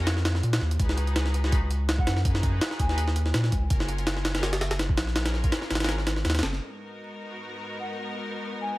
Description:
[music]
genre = drum and bass, jungle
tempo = 165 BPM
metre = 4/4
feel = swing 54% on 16ths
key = G# dorian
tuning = A4 = 439 Hz
[part]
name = rich symphonic string section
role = sustained chords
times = 0.0-8.8 s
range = G#2 to B4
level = -36 LUFS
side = left 1 dB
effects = none
[part]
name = saturated sub bass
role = bass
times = 0.0-6.6 s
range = F#1 to A#2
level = -26 LUFS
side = equal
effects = none
[part]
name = jungle sampler-style drum kit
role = drums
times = 0.1-6.6 s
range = hi-hat, kick drum, snare drum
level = -26 LUFS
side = equal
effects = none
[part]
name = silver concert flute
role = melody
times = 2.0-3.1, 7.8-8.8 s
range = F#5 to G#5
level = -37 LUFS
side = equal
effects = dub echo
[sound]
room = little or no reverb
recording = vinyl crackle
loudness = -24 LUFS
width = side -18 dB against mid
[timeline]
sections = 0.0-6.6 A section; 6.6-8.8 B section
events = drop 0.0-6.6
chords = 0.0 D#sus2; 0.8 C#9sus4; 3.7 F#maj7; 6.6 G#m9

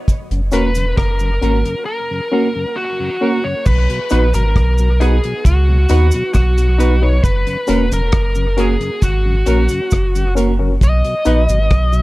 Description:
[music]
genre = roots reggae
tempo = 67 BPM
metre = 4/4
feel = straight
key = B major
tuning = A4 = 440 Hz
[part]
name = deep reggae drum kit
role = drums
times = 0.1-11.9 s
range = crash cymbal, hi-hat, kick drum, rim click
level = -17 LUFS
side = equal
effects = none
[part]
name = cabasa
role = percussion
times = 0.1-12.0 s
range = none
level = -33 LUFS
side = right 4 dB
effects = none
[part]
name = mellow tonewheel organ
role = accompaniment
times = 0.3-12.0 s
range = F#2 to F#4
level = -26 LUFS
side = left 1 dB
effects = chorus vibrato, slow rotary speaker, dub echo
[part]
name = warm sub bass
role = bass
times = 0.3-12.0 s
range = E1 to D#2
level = -14 LUFS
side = equal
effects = none
[part]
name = biting lead guitar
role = melody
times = 0.5-12.0 s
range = F#4 to D#5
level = -20 LUFS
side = left 1 dB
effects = overdrive, dub echo
[part]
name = clean electric guitar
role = accompaniment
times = 0.5-11.4 s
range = A#3 to B4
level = -23 LUFS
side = right 6 dB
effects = dub echo
[part]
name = barky reed electric piano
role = stabs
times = 0.5-11.4 s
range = C#4 to B4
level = -21 LUFS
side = left 4 dB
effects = overdrive, fast tremolo
[sound]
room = little or no reverb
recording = dark, warm production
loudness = -13 LUFS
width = side -19 dB against mid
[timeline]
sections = 0.0-3.7 A section; 3.7-12.0 B section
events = none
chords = 0.1 F#; 3.7 B; 7.2 F#; 10.8 B

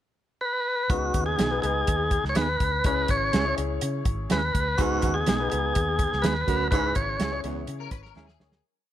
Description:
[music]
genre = uptempo 1960s-style soul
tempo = 124 BPM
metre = 4/4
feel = straight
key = C# dorian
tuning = A4 = 440 Hz
[part]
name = tonewheel organ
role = melody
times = 0.4-7.4 s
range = F#4 to C#5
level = -26 LUFS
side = equal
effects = overdrive
[part]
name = warm baby grand piano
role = accompaniment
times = 0.9-8.9 s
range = C#3 to E5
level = -33 LUFS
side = left 6 dB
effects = none
[part]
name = vintage muted fingered electric bass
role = bass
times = 0.9-8.6 s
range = G#1 to C#3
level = -30 LUFS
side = equal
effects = none
[part]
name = warm soul drum kit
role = drums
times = 0.9-8.6 s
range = hi-hat, kick drum, snare drum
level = -27 LUFS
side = equal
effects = none
[part]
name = mellow electric guitar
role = stabs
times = 1.4-8.3 s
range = D#3 to G#4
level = -34 LUFS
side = right 5 dB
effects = tape echo
[part]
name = warm baritone saxophone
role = riff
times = 4.8-7.6 s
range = E2 to G#2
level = -32 LUFS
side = right 9 dB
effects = none
[part]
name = electric guitar at the edge of break-up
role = riff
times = 7.8-8.6 s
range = G#4 to B4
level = -44 LUFS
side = left 10 dB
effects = ensemble chorus
[sound]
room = light reverb, small room reverb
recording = none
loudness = -23 LUFS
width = side -12 dB against mid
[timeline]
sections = 0.0-0.9 pickup bar; 0.9-8.7 verse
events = fade-out 6.7-8.7; drum fill 8.2-8.7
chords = 0.0 N.C.; 0.9 G#m; 2.8 C#m; 4.8 G#m; 6.7 C#m

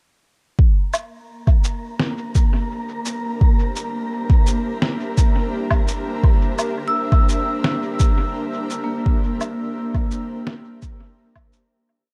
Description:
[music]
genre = ambient dub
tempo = 85 BPM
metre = 4/4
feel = straight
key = G dorian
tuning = A4 = 440 Hz
[part]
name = granular cloud pad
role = sustained chords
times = 2.3-11.9 s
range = D4 to E5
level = -32 LUFS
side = equal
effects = built-in reverb
[part]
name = electronic kick drum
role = drums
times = 0.6-11.5 s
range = none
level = -18 LUFS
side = equal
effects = none
[part]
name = wind-like tuned noise texture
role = texture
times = 1.3-11.9 s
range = Bb3 to Bb5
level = -31 LUFS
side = equal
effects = built-in reverb
[part]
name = electronic shaker, woodblock and snare drum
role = drums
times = 0.9-11.7 s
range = none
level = -27 LUFS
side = equal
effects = dub echo
[part]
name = vibraphone with medium hard mallets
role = arpeggios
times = 6.9-11.9 s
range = Bb3 to E6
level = -28 LUFS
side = equal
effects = dub echo
[sound]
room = little or no reverb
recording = none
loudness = -20 LUFS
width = mono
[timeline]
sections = 0.6-11.9 groove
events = fade-in on ambient pad 0.6-11.9; fade-out 8.1-11.9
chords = 0.6 Gm6

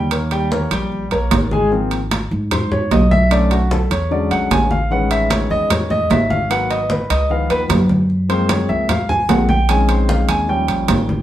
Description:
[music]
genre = Afro-Cuban jazz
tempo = 150 BPM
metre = 4/4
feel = straight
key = unclear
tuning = A4 = 440 Hz
[part]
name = clear concert grand piano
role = accompaniment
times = 0.0-11.2 s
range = D3 to Ab5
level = -18 LUFS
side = left 1 dB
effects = none
[part]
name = upright bass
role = bass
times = 0.0-11.2 s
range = Ab1 to Ab2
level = -19 LUFS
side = equal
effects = none
[part]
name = congas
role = percussion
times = 0.1-11.2 s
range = none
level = -23 LUFS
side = left 1 dB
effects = none
[part]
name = timbales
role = percussion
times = 0.1-11.1 s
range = none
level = -22 LUFS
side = right 4 dB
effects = none
[sound]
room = wet studio reverb, RT60 0.7 s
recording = band playing live in one room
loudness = -14 LUFS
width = side -12 dB against mid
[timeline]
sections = 0.0-1.7 A section; 1.7-11.2 A section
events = grand piano solo 1.7-11.2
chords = 0.1 Eb7; 1.7 Ab69; 3.3 Bm9; 4.1 E13; 4.9 Amaj9#11; 6.5 Abm7; 7.3 Db9; 8.1 Gbmaj9#11; 9.7 Bbm11; 10.5 Eb9

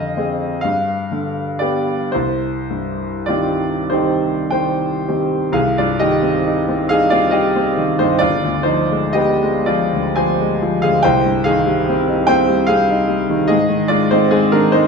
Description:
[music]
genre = classical, romantic nocturne for solo piano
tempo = 32-50 BPM (dotted quarters)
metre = 12/8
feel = rubato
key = C minor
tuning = A4 = 440 Hz
[part]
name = bright grand piano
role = solo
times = 0.0-14.9 s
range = G1 to Ab5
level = -14 LUFS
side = equal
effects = none
[sound]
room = wet stone room reverb, RT60 1.3 s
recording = none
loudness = -14 LUFS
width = side -5 dB against mid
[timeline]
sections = 0.0-5.6 A section; 5.6-14.9 A section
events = none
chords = 0.0 Dm7b5/F; 0.6 G7; 2.1 Cm; 8.2 G7b9; 11.0 Cm; 13.5 Ab

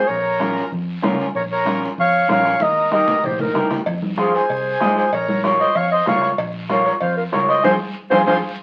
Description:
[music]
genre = latin, cumbia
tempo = 190 BPM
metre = 4/4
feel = straight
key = unclear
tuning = A4 = 441 Hz
[part]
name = dark clarinet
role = melody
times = 0.0-8.3 s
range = Ab4 to F5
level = -21 LUFS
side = equal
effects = none
[part]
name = accordion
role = second line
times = 0.0-8.4 s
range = Eb4 to Db5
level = -26 LUFS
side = equal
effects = none
[part]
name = fingered electric bass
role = bass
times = 0.0-8.4 s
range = Bb1 to Ab2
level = -31 LUFS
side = equal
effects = none
[part]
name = bombo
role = percussion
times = 0.1-8.3 s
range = none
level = -33 LUFS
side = equal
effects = none
[part]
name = guiro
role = percussion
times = 0.1-8.4 s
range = none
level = -41 LUFS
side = equal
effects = none
[part]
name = electric guitar through a small old amp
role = accompaniment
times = 0.4-8.4 s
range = Db4 to Eb5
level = -24 LUFS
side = equal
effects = none
[part]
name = congas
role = percussion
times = 0.4-8.3 s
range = none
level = -28 LUFS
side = equal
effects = none
[part]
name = cowbell and timbales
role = percussion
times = 3.9-8.3 s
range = none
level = -29 LUFS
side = equal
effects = none
[sound]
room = moderate studio reverb, RT60 0.7 s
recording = very old 78 rpm record, vinyl crackle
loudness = -19 LUFS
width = mono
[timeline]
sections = 0.0-8.6 A section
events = drum fill 2.6-3.9; band accent 7.6-8.6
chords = 0.1 Bbm; 2.6 Eb; 3.9 Fm; 5.1 Bbm; 7.6 Fm

